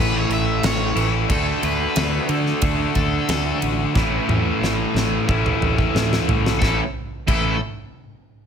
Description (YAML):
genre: classic rock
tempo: 90 BPM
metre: 4/4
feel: straight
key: A major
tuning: A4 = 440 Hz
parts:
  - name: octave-fuzz lead guitar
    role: melody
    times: 0.0-0.6 s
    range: E5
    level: -37 LUFS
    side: right 1 dB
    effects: none
  - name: cranked stack guitar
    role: second line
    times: 0.0-7.6 s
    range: A4 to E5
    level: -27 LUFS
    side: left 4 dB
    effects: overdrive
  - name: sludgy distorted guitar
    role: riff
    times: 0.0-7.6 s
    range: A2 to F#4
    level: -23 LUFS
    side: left 11 dB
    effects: overdrive
  - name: sludgy distorted guitar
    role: riff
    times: 0.0-7.5 s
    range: A2 to F#4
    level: -25 LUFS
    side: right 11 dB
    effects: overdrive
  - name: modern bright fingered electric bass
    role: bass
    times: 0.0-7.6 s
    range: A1 to D3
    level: -24 LUFS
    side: equal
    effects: none
  - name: huge arena drum kit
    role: drums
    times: 0.3-7.4 s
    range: crash cymbal, kick drum, ride cymbal, snare drum, toms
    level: -23 LUFS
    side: equal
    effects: none
room: light reverb, studio reverb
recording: none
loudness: -18 LUFS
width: side -7 dB against mid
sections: 0.0-1.3 A section; 1.3-6.6 B section; 6.6-8.5 C section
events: drum fill 4.0-6.6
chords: 0.0 A; 1.3 D; 4.0 A